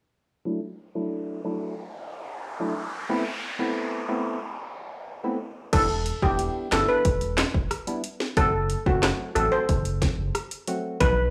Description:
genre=dancehall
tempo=91 BPM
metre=4/4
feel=straight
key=E minor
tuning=A4 = 439 Hz
part: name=percussive organ stab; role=accompaniment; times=0.5-11.2 s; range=F#3 to F#4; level=-32 LUFS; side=equal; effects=chorus, low-pass filter
part: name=noise sweep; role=sound effects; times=1.1-5.7 s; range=none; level=-37 LUFS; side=equal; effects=none
part: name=steel pan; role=melody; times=5.7-11.1 s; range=F#4 to C5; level=-27 LUFS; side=equal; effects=analog delay
part: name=round analog bass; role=bass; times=5.7-11.3 s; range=E1 to B1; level=-30 LUFS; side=equal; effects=none
part: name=afro-pop drum kit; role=drums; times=5.7-11.2 s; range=crash cymbal, handclaps, hi-hat, kick drum, rim click, snare drum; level=-28 LUFS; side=equal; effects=none
room=light reverb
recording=dry, gritty hardware recording, transformer saturation, small room ambience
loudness=-26 LUFS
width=mono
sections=0.5-5.7 A section; 5.7-11.3 B section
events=filter sweep on synth stab 0.5-5.7; noise sweep 1.1-5.7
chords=0.5 Dadd9; 3.1 Amadd9; 5.7 Em7; 8.4 F#dim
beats=| 0.46 1.12 1.78 2.44 | 3.10 3.75 4.41 5.07 | 5.73 6.39 7.05 7.71 | 8.37 9.03 9.69 10.35 | 11.01

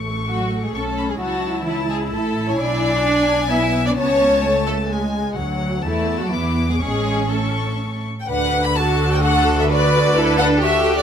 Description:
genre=quick classical-period movement for string orchestra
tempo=129 BPM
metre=3/4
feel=rubato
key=A major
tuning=A4 = 440 Hz
part: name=warm chamber violin section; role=melody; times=0.0-11.0 s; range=F#4 to D6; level=-26 LUFS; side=left 3 dB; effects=none
part: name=dark symphonic viola section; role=accompaniment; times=0.0-11.0 s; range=F#3 to B4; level=-22 LUFS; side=right 1 dB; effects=none
part: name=rich symphonic double bass section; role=bass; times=0.0-11.0 s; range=A1 to E2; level=-24 LUFS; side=right 1 dB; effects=none
part: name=warm symphonic violin section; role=second line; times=0.3-11.0 s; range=E4 to B5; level=-21 LUFS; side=left 2 dB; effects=none
part: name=warm symphonic cello section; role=bass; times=0.3-11.0 s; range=D3 to E4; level=-25 LUFS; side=right 1 dB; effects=none
room=light reverb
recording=close, detailed microphones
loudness=-16 LUFS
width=side -8 dB against mid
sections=0.0-8.3 A section; 8.3-11.0 B section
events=none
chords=0.0 A; 1.2 A/C#; 2.6 G#dim/B; 4.0 A/C#; 5.4 D; 5.9 A5/E; 6.3 E7; 6.8 A; 8.3 D; 9.7 Em7/D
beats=0.29 0.74 | 1.20 1.66 2.12 | 2.58 3.04 3.51 | 3.98 4.45 4.91 | 5.38 5.85 6.33 | 6.81 7.31 7.80 | 8.29 8.76 9.23 | 9.70 10.16 10.62

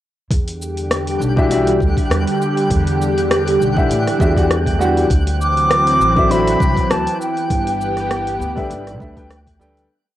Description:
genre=sunset chillout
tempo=100 BPM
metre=4/4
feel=swing 55% on 16ths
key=E minor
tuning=A4 = 440 Hz
part: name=lush unison pad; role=sustained chords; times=0.7-9.9 s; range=D3 to G4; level=-20 LUFS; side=equal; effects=chorus, phaser, cassette tape
part: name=upright bass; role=bass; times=0.3-9.9 s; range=G1 to A2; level=-21 LUFS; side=equal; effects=none
part: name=electronic kick drum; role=drums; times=0.3-9.6 s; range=none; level=-18 LUFS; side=equal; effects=studio reverb, cassette tape
part: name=smooth R&B drum kit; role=drums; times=0.3-9.9 s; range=cabasa, hi-hat, rim click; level=-24 LUFS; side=equal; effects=studio reverb, cassette tape
part: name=twinkling granular texture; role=texture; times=1.0-9.9 s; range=G5 to F#6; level=-30 LUFS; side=left 1 dB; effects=built-in reverb, cassette tape
part: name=warm grand piano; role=accompaniment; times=1.4-9.9 s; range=D3 to G5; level=-20 LUFS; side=left 1 dB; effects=auto-pan, cassette tape, analog delay
part: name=bright reedy baroque flute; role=melody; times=5.4-9.3 s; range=G5 to D6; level=-18 LUFS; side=equal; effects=cassette tape, tape echo
room=moderate spring reverb, RT60 2.6 s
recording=home recording on cassette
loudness=-14 LUFS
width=side -13 dB against mid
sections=0.3-9.9 groove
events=fade-out 6.7-9.9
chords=0.3 Em9; 5.1 D9; 7.2 G6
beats=| 0.30 0.90 1.50 2.10 | 2.70 3.30 3.90 4.50 | 5.10 5.70 6.30 6.90 | 7.50 8.10 8.70 9.30

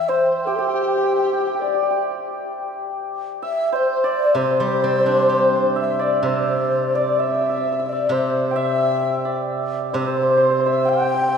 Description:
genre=chinese traditional, Chinese chamber ensemble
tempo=65 BPM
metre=2/4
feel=rubato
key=C gong mode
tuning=A4 = 440 Hz
part: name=mellow low xiao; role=melody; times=0.0-11.4 s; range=G4 to G5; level=-21 LUFS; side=left 1 dB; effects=none
part: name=hammered dulcimer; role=second line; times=0.0-11.4 s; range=G4 to G5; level=-22 LUFS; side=right 1 dB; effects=none
part: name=mellow large dizi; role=second line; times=0.0-11.4 s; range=G4 to G5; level=-26 LUFS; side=left 4 dB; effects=none
part: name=steel-string zither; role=accompaniment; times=4.3-11.4 s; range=C3 to G4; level=-26 LUFS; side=right 1 dB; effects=none
room=wet cathedral reverb, RT60 6.0 s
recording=recorded in a church or concert hall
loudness=-18 LUFS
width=side -6 dB against mid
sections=0.0-6.2 A section; 6.2-11.4 B section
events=none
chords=none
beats=| 0.70 1.61 | 2.51 3.43 | 4.36 5.29 | 6.24 7.18 | 8.11 9.03 | 9.95 10.88

